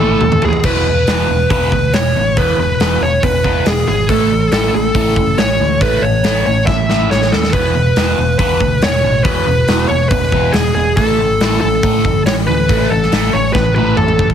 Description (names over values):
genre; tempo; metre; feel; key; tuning
hard rock; 139 BPM; 4/4; straight; E major; A4 = 440 Hz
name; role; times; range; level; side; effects
smooth overdriven lead guitar; melody; 0.0-14.3 s; G#4 to E5; -16 LUFS; equal; none
crunchy overdriven guitar; riff; 0.0-14.3 s; E2 to A3; -17 LUFS; equal; phaser
fingered electric bass; bass; 0.0-14.3 s; E1 to D#2; -19 LUFS; equal; none
big rock drum kit; drums; 0.2-14.3 s; crash cymbal, hi-hat, kick drum, snare drum, toms; -17 LUFS; equal; none
room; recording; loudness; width
light reverb, small room ambience; heavily compressed radio sound; -11 LUFS; side -8 dB against mid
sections
0.6-14.3 A section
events
drum fill 0.0-0.6, 6.7-7.5, 13.6-14.3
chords
0.0 A5; 0.6 E5; 4.1 A; 7.5 E5; 11.0 A5